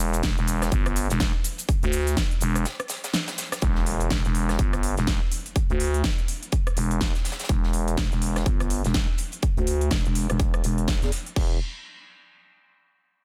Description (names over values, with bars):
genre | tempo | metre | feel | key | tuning
bass house | 124 BPM | 4/4 | swing 59% on 16ths | E minor | A4 = 442 Hz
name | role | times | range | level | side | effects
growling FM bass | bass | 0.0-11.6 s | E1 to E2 | -27 LUFS | equal | sidechain pumping
big-room dance drum kit | drums | 0.0-11.5 s | crash cymbal, hi-hat, rim click, shaker, snare drum | -33 LUFS | equal | none
crisp fusion drum kit | drums | 0.1-11.3 s | hi-hat, snare drum | -41 LUFS | equal | none
electronic kick drum | drums | 0.2-11.5 s | none | -27 LUFS | equal | none
impact | sound effects | 3.7-5.6 s | none | -37 LUFS | equal | none
room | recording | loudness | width
digital ambience | dense, heavily limited modern master | -25 LUFS | mono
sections
0.0-3.6 A section; 3.6-11.4 B section; 11.4-13.2 C section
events
drop 0.0-3.6; break 2.7-3.6; impact 3.6-5.6; filter sweep on FM bass 3.6-11.4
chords
none